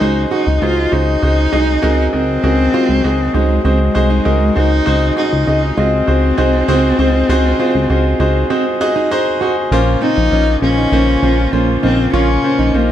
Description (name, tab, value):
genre	pop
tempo	99 BPM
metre	4/4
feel	straight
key	unclear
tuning	A4 = 440 Hz
part	dark cello	melody	0.0-12.9 s	Ab3 to F4	-17 LUFS	left 2 dB	digital delay
part	bright grand piano	accompaniment	0.0-12.9 s	Bb2 to Bb5	-17 LUFS	equal	none
part	warm studio string section	sustained chords	0.0-12.9 s	Db3 to F4	-27 LUFS	left 1 dB	none
part	chorused synth bass	bass	0.0-12.9 s	Bb1 to Db2	-16 LUFS	equal	none
part	fingerpicked plugged-in steel-string acoustic guitar	riff	0.3-12.9 s	C4 to Gb4	-22 LUFS	right 6 dB	none
room	moderate large studio reverb, RT60 0.9 s, small room ambience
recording	none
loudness	-12 LUFS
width	side -11 dB against mid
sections	0.0-9.7 A section; 9.7-12.9 B section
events	break 8.5-9.7; grand piano fill 8.8-9.7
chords	0.0 Ab7; 9.7 Bbmadd9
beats	| 0.01 0.62 1.23 1.83 | 2.44 3.05 3.65 4.26 | 4.87 5.47 6.08 6.68 | 7.29 7.89 8.50 9.11 | 9.71 10.32 10.92 11.53 | 12.13 12.74